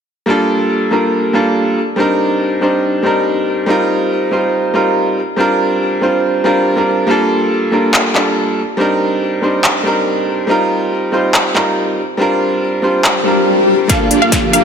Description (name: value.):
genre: future bass.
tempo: 141 BPM.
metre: 4/4.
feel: half-time.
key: G minor.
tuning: A4 = 436 Hz.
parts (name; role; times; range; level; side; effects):
bright grand piano; accompaniment; 0.3-14.6 s; G3 to C5; -13 LUFS; equal; sidechain pumping, ping-pong delay.
big-room dance drum kit; drums; 7.9-14.6 s; handclaps, hi-hat, snare drum; -16 LUFS; equal; overdrive, high-pass filter on snare, small room ambience, high-pass filter on hats.
swell and riser; sound effects; 13.2-14.6 s; none; -15 LUFS; left 4 dB; none.
wide unison pluck; melody; 13.9-14.6 s; F5; -15 LUFS; equal; sidechain pumping.
airy breathy pad; sustained chords; 13.9-14.6 s; G2 to Bb3; -22 LUFS; equal; chorus, sidechain pumping.
supersaw chords; riff; 13.9-14.6 s; Bb3 to D5; -15 LUFS; right 3 dB; phaser, sidechain pumping, low-pass filter.
electronic kick drum; drums; 13.9-14.4 s; none; -18 LUFS; left 1 dB; overdrive, small room ambience.
room: moderate lush hall reverb, RT60 1.9 s, digital ambience.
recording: none.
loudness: -12 LUFS.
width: side -7 dB against mid.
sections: 0.3-13.9 A section.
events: swell 13.2-13.9; drum fill 13.9-14.6.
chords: 0.3 Gm7; 1.8 Cm9; 3.7 F9sus4; 5.2 Bb69; 7.1 Gm7; 8.6 Cm9; 10.5 F9sus4; 12.0 Bb69; 13.9 Gm7.